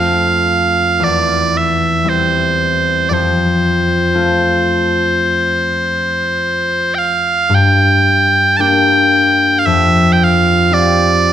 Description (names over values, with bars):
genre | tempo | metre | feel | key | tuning
celtic folk, Celtic slow air | 52-58 BPM | 4/4 | rubato | unclear | A4 = 440 Hz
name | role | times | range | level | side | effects
loud bright bagpipes | melody | 0.0-11.3 s | C5 to A5 | -13 LUFS | right 2 dB | none
concert harp | accompaniment | 0.0-11.3 s | E2 to G4 | -15 LUFS | left 1 dB | none
room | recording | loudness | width
moderate concert hall reverb, RT60 2.0 s | none | -11 LUFS | side -10 dB against mid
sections
0.0-7.5 A section; 7.5-11.3 A section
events
none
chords
0.0 F; 1.0 C/E; 3.1 F; 7.5 Gm; 9.7 Fsus2